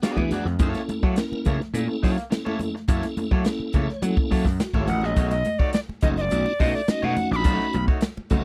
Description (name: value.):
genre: funk.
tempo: 105 BPM.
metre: 4/4.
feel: straight.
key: B mixolydian.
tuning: A4 = 440 Hz.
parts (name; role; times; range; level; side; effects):
electric guitar at the edge of break-up; accompaniment; 0.0-8.4 s; A3 to D5; -34 LUFS; equal; none.
tonewheel organ; stabs; 0.0-8.4 s; A3 to E5; -31 LUFS; equal; overdrive, chorus vibrato, fast rotary speaker.
swinging big-band drum kit; drums; 0.0-8.4 s; hi-hat, kick drum, snare drum; -25 LUFS; equal; none.
gritty slap bass; bass; 0.2-8.4 s; F#1 to F#3; -28 LUFS; equal; overdrive.
congas; percussion; 0.2-8.4 s; none; -34 LUFS; equal; none.
breathy alto recorder; melody; 4.9-7.8 s; D5 to D6; -28 LUFS; equal; none.
room: little or no reverb.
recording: dry, close 1970s-style studio recording.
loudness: -23 LUFS.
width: mono.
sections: 0.0-5.2 A section; 5.2-8.4 B section.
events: tonewheel organ fill 3.5-5.2, 8.0-8.4.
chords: 0.0 E9; 0.6 F#7#9; 5.2 B9.